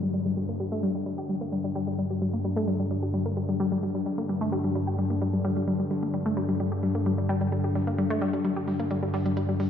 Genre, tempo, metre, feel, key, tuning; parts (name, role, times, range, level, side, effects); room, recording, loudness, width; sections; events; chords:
driving peak-time techno; 130 BPM; 4/4; straight; A4 = 435 Hz
analog pluck; riff; 0.0-9.7 s; G3 to G4; -28 LUFS; left 2 dB; chorus, ping-pong delay
analog drone; drone; 0.0-9.7 s; G2 to D3; -28 LUFS; equal; chorus
electronic hi-hat; drums; 0.0-9.7 s; -56 LUFS; equal; overdrive, low-pass filter on snare, low-pass filter on hats, low-pass filter on cymbals
downlifter; sound effects; 0.0-2.0 s; -44 LUFS; equal
light reverb; played on a big sound system in a bare room, stone room reverb, low-pass filter; -25 LUFS; side -9 dB against mid
0.0-9.7 A section
filter sweep on synth arpeggio sound 0.0-9.7; filter sweep 0.0-9.7
0.0 G5